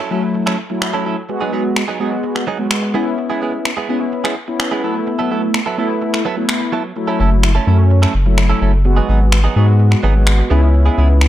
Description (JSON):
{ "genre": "dance-pop", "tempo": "127 BPM", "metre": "4/4", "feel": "straight", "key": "F# dorian", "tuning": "A4 = 439 Hz", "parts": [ { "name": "direct-recorded clean electric guitar", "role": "riff", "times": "0.0-11.2 s", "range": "F#3 to A4", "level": "-22 LUFS", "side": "right 6 dB", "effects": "lush chorus" }, { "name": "mellow synth brass", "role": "accompaniment", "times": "0.1-11.3 s", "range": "F#3 to F#4", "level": "-19 LUFS", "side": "left 1 dB", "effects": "chorus" }, { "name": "electronic finger snaps", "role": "drums", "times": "0.5-11.3 s", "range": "none", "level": "-22 LUFS", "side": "equal", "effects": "overdrive" }, { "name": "saturated sub bass", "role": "bass", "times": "7.2-11.3 s", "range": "F#1 to G#2", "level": "-12 LUFS", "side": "equal", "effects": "none" } ], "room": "light reverb, digital ambience", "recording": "dark, warm production", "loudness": "-13 LUFS", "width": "side -13 dB against mid", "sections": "0.0-11.3 A section", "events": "none", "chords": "0.0 F#m7; 1.3 G#m7; 2.9 C#m7; 4.8 B7sus4; 7.0 F#m7; 8.9 G#m7; 10.5 C#m7" }